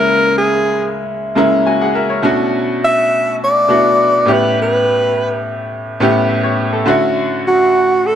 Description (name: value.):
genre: soul.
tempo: 103 BPM.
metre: 4/4.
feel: straight.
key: unclear.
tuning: A4 = 440 Hz.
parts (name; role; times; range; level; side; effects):
breathy alto saxophone; melody; 0.0-8.2 s; F#4 to E5; -12 LUFS; equal; none.
bright baby grand piano; accompaniment; 0.0-8.2 s; A2 to A#5; -15 LUFS; equal; none.
room: moderate echo chamber reverb, RT60 1.8 s.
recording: none.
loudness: -12 LUFS.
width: side -9 dB against mid.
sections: 0.0-8.2 A section.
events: grand piano fill 1.1-2.2.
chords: 0.0 C#m6; 2.2 Bm11; 4.3 A9; 6.9 Dmaj9.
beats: 0.50 1.08 1.66 | 2.24 2.82 3.40 3.98 | 4.56 5.14 5.72 6.30 | 6.88 7.46 8.04.